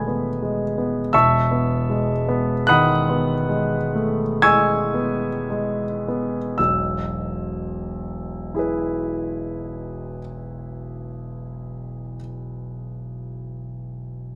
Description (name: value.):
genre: classical, impressionist solo piano.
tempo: 25-44 BPM.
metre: 3/4.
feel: rubato.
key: E major.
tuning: A4 = 440 Hz.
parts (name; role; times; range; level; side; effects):
warm concert grand piano; solo; 0.0-14.4 s; E1 to G#6; -23 LUFS; equal; none.
room: moderate large studio reverb, RT60 1.3 s.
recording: none.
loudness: -22 LUFS.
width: mono.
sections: 0.0-1.1 A section; 1.1-6.6 B section; 6.6-12.4 C section.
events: slowing down 0.0-6.6.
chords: 0.0 Emaj7; 1.1 Emaj9; 6.6 E.